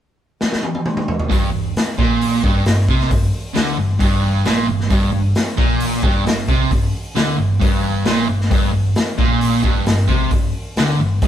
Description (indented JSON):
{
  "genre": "blues rock power trio and southern rock",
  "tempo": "133 BPM",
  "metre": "4/4",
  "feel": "straight",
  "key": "unclear",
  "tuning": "A4 = 440 Hz",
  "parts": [
    { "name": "raw garage drum kit", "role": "drums", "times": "0.4-11.3 s", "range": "hi-hat, kick drum, snare drum, toms", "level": "-18 LUFS", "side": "equal", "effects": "none" },
    { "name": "fuzz guitar", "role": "riff", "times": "1.3-11.3 s", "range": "G2 to D3", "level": "-18 LUFS", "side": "equal", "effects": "distortion" },
    { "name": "hollow-body short-scale fingered electric bass", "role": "bass", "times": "1.3-11.3 s", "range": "G1 to D2", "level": "-25 LUFS", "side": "equal", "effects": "none" }
  ],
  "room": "moderate stone room reverb, RT60 0.9 s",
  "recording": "band playing live in one room",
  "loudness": "-15 LUFS",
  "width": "side -10 dB against mid",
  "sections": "0.0-1.3 A section; 1.3-11.3 B section",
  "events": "drum fill 0.4-1.3",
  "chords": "0.0 N.C.; 1.3 G5"
}